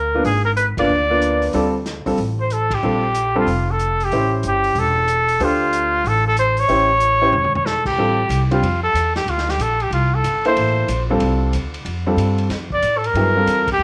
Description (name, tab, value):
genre	jazz, small-group swing and bop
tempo	186 BPM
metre	4/4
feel	swing 63% on 8ths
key	D minor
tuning	A4 = 438 Hz
part	warm trumpet	melody	0.0-13.8 s	F4 to D5	-20 LUFS	equal	none
part	upright bass	bass	0.0-13.8 s	E1 to A2	-25 LUFS	equal	none
part	warm baby grand piano	accompaniment	0.1-13.6 s	F#3 to B#4	-24 LUFS	equal	none
part	vintage drum kit	drums	0.2-13.7 s	crash cymbal, hi-hat, kick drum, ride cymbal, snare drum, toms	-34 LUFS	equal	none
room	moderate plate reverb, RT60 1.0 s, small room ambience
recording	none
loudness	-18 LUFS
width	mono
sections	0.0-8.0 A section; 8.0-13.8 A section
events	band accent 0.7, 2.7, 13.6; drum fill 7.3-7.7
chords	0.2 G#dim7; 1.5 Dm7; 2.8 Bb5; 4.1 A7#9; 5.4 Dm7; 6.7 A7#9; 8.0 Dm7; 13.1 Gm7